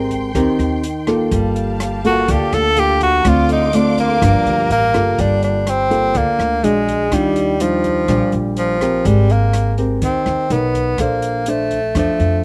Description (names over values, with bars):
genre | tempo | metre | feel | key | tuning
bossa nova | 124 BPM | 4/4 | straight | G minor | A4 = 440 Hz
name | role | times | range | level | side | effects
nylon-string guitar | accompaniment | 0.0-12.4 s | G2 to C#5 | -21 LUFS | equal | none
warm symphonic string section | sustained chords | 0.0-5.2 s | G4 to D6 | -29 LUFS | equal | none
upright bass | bass | 0.0-12.4 s | G1 to F2 | -23 LUFS | equal | none
open jazz drum kit | drums | 0.1-12.3 s | hi-hat, kick drum, rim click | -29 LUFS | equal | none
clear tenor saxophone | melody | 2.1-12.4 s | F3 to A4 | -19 LUFS | equal | slapback echo
room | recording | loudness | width
little or no reverb | recorded outdoors, with no room sound | -16 LUFS | mono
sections
0.0-5.2 A section; 5.2-12.4 B section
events
tenor saxophone solo 0.0-5.2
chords
0.0 Abmaj9; 1.3 Gm9; 3.2 Dm7; 4.2 Gm9; 6.6 Bbaug7; 7.1 Ebmaj9; 9.1 Abmaj9; 10.5 Bmaj9; 11.0 Bbmaj9